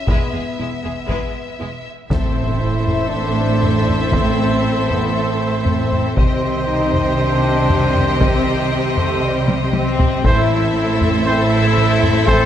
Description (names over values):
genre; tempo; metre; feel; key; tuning
cinematic, epic orchestral film score; 118 BPM; 4/4; straight; A minor; A4 = 439 Hz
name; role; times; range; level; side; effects
rich symphonic violin section; melody; 0.0-12.5 s; Eb5 to E5; -27 LUFS; left 3 dB; none
warm French horn section; sustained chords; 0.0-12.5 s; G3 to A4; -22 LUFS; left 4 dB; none
warm symphonic violin section; second line; 0.1-12.5 s; E4 to C5; -30 LUFS; left 4 dB; none
rich symphonic viola section; accompaniment; 0.1-12.5 s; G#3 to A4; -28 LUFS; right 2 dB; none
warm symphonic cello section; bass; 0.1-12.5 s; E2 to C3; -23 LUFS; right 2 dB; none
warm symphonic double bass section; bass; 0.1-12.5 s; E1 to C2; -22 LUFS; right 2 dB; none
taiko ensemble; drums; 0.1-12.5 s; none; -20 LUFS; equal; none
rich symphonic string section; sustained chords; 2.1-12.5 s; C4 to G5; -26 LUFS; equal; none
warm trombone section; sustained chords; 2.1-12.5 s; Eb3 to C4; -28 LUFS; right 4 dB; none
warm trumpet; stabs; 2.1-12.5 s; C5; -24 LUFS; right 1 dB; none
impact; sound effects; 2.1-4.1 s; none; -26 LUFS; equal; none
room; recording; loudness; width
moderate concert hall reverb, RT60 2.2 s; none; -14 LUFS; side -10 dB against mid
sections
0.0-2.1 A section; 2.1-12.5 B section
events
impact 2.1-4.1; drum fill 9.5-10.2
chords
0.0 E; 2.1 Am; 6.2 Cm; 10.2 Am